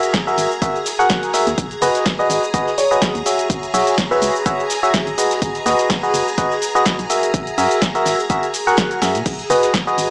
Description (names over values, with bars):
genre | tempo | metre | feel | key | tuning
piano house | 125 BPM | 4/4 | swing 55% on 16ths | B major | A4 = 440 Hz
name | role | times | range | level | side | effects
string machine, violins | sustained chords | 0.0-10.1 s | G#4 to A#5 | -24 LUFS | equal | ensemble chorus, sidechain pumping
barking FM electric piano | riff | 0.0-10.1 s | F#4 to F#5 | -17 LUFS | equal | chorus, cassette tape, sidechain pumping
punchy analog drum machine | drums | 0.0-10.1 s | crash cymbal, hi-hat, shaker, snare drum | -22 LUFS | equal | none
electronic kick drum | drums | 0.1-9.8 s | none | -23 LUFS | equal | none
warm soul drum kit | drums | 0.1-10.1 s | hi-hat, snare drum | -30 LUFS | equal | none
organ-like FM bass | bass | 0.4-10.1 s | E1 to A#2 | -27 LUFS | equal | sidechain pumping
dark concert grand piano | melody | 1.8-4.8, 9.5-9.6 s | B4 to D#5 | -20 LUFS | equal | none
room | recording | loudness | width
light reverb, digital ambience | small speaker sound | -15 LUFS | side -31 dB against mid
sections
0.0-10.1 A section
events
drum fill 9.0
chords
0.0 F#9; 1.6 B6; 3.5 E69; 5.2 G#m7; 7.1 F#9; 9.3 B6